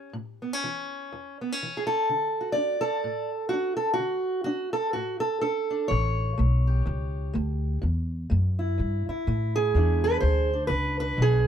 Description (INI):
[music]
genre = acoustic country blues, solo or duo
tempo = 125 BPM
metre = 4/4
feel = swing 60% on 8ths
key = A major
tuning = A4 = 440 Hz
[part]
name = fingerpicked steel-string acoustic guitar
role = melody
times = 0.0-11.5 s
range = E2 to D5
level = -26 LUFS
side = right 1 dB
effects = none
[part]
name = upright bass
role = bass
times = 5.9-11.5 s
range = A1 to A2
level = -24 LUFS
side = equal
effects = none
[sound]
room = light reverb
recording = close, detailed microphones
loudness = -24 LUFS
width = side -9 dB against mid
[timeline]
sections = 0.0-11.5 A section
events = none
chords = 0.0 A; 2.1 D; 5.9 A7; 9.7 E7